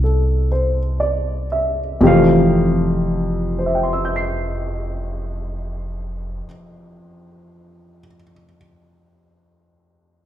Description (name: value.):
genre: jazz ballad.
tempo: 38 BPM.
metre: 4/4.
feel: swing 66% on 8ths.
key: F major.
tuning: A4 = 437 Hz.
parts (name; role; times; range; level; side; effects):
warm baby grand piano; accompaniment; 0.0-10.3 s; F2 to C7; -18 LUFS; equal; none.
upright bass; bass; 0.0-6.4 s; F1 to C2; -22 LUFS; equal; none.
room: wet recital hall reverb, RT60 1.6 s.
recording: recorded in a church or concert hall.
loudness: -16 LUFS.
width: side -11 dB against mid.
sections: 0.0-2.0 A section; 2.0-8.3 B section.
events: slowing down 0.0-2.0.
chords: 0.0 Fmaj9.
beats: 0.50 | 2.00 3.57 5.13 6.69.